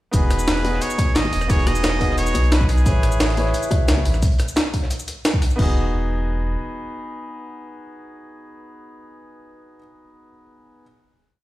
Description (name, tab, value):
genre	liquid drum and bass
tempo	176 BPM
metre	4/4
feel	straight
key	E major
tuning	A4 = 440 Hz
part	trumpet with straight mute	melody	0.1-3.7 s	G#4 to D#5	-26 LUFS	right 1 dB	digital delay
part	clear baby grand piano	accompaniment	0.1-10.8 s	B3 to C#5	-27 LUFS	equal	digital delay
part	sub bass with octave	bass	0.1-6.6 s	E1 to C#2	-20 LUFS	equal	none
part	breakbeat sampler-style drum kit	drums	0.1-5.7 s	crash cymbal, hi-hat, rim click, shaker, snare drum	-24 LUFS	equal	none
part	crunchy breakbeat drum kit	drums	0.1-5.5 s	hi-hat, snare drum	-33 LUFS	equal	high-pass filter on hats, high-pass filter on snare, high-pass filter on room
part	electronic kick drum	drums	0.1-5.7 s	none	-19 LUFS	equal	none
part	bongos	percussion	0.6-4.0 s	none	-30 LUFS	left 4 dB	none
room	small room ambience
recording	played on a big sound system in a bare room, large studio reverb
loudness	-17 LUFS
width	side -16 dB against mid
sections	0.1-5.6 drop; 5.6-8.3 final chord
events	drop 0.1-5.6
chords	0.1 Emaj9; 2.9 Amaj9; 5.6 Emaj9